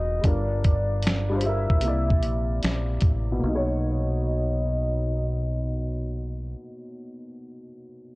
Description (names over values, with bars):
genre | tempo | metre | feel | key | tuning
lo-fi hip hop | 75 BPM | 4/4 | swing 66% on 16ths | unclear | A4 = 441 Hz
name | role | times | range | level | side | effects
warbly nostalgic lead | melody | 0.0-6.5 s | D5 to E5 | -32 LUFS | equal | chorus, low-pass filter
dark upright piano | accompaniment | 0.0-8.2 s | B2 to D5 | -30 LUFS | left 1 dB | low-pass filter
deep dub fingered electric bass | bass | 0.0-6.5 s | E1 to C2 | -26 LUFS | equal | none
dusty soul sampler-style drum kit | drums | 0.2-3.3 s | finger snaps, hi-hat, kick drum, snare drum | -22 LUFS | equal | vintage 12-bit sampler grit
room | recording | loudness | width
light reverb, digital ambience | cassette tape | -22 LUFS | side -22 dB against mid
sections
0.0-3.4 A section; 3.4-6.6 B section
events
filter sweep 0.0-3.4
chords
0.2 Gm7; 1.8 C9; 3.4 Bmaj9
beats
| 0.23 1.03 1.83 2.63 | 3.44 4.24 5.04 5.83